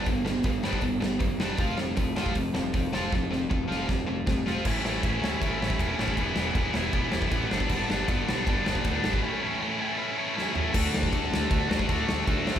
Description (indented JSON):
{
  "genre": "punk rock",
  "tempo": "157 BPM",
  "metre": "4/4",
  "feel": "straight",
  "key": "unclear",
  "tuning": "A4 = 440 Hz",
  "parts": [
    { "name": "tight distorted guitar", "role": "riff", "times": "0.0-12.6 s", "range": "G2 to F#4", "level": "-28 LUFS", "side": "equal", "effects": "distortion" },
    { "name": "fuzz picked electric bass", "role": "bass", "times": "0.0-12.5 s", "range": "E1 to D2", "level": "-33 LUFS", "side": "equal", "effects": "overdrive" },
    { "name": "big rock drum kit", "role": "drums", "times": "0.1-12.6 s", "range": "crash cymbal, hi-hat, kick drum, ride cymbal, snare drum, toms", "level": "-29 LUFS", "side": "equal", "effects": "none" }
  ],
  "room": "light reverb",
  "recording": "band playing live in one room",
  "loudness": "-24 LUFS",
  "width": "side -10 dB against mid",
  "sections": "0.0-4.7 A section; 4.7-10.8 B section; 10.8-12.6 C section",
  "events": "drum fill 3.1-4.7, 10.4-10.8; break 9.2-10.8",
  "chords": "0.0 G; 1.6 F5; 4.7 A; 6.2 Em; 7.5 G; 9.2 A; 10.8 D",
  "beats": "| 0.07 0.46 0.84 1.22 | 1.60 1.98 2.37 2.75 | 3.13 3.51 3.89 4.27 | 4.65 5.04 5.42 5.80 | 6.18 6.56 6.94 7.32 | 7.71 8.09 8.47 8.85 | 9.23 9.62 10.00 10.38 | 10.76 11.14 11.53 11.91 | 12.29"
}